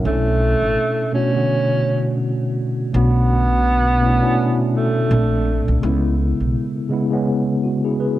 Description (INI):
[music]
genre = lo-fi hip hop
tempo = 83 BPM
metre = 4/4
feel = swing 58% on 16ths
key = unclear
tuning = A4 = 438 Hz
[part]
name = mellow tine electric piano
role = accompaniment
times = 0.0-8.2 s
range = Bb2 to B4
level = -19 LUFS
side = equal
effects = medium stereo tremolo, cassette tape, low-pass filter
[part]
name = upright bass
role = bass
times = 0.0-6.5 s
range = A1 to C#2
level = -19 LUFS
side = equal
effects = none
[part]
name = breathy tenor saxophone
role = melody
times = 0.1-5.8 s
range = A3 to C#4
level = -21 LUFS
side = right 2 dB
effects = low-pass filter
[sound]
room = moderate small room reverb, RT60 0.5 s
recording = cassette tape, faint mains hum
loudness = -16 LUFS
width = side -14 dB against mid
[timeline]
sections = 0.0-8.2 A section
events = none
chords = 0.0 Bm11; 5.1 Bbmaj9; 5.8 Bsus4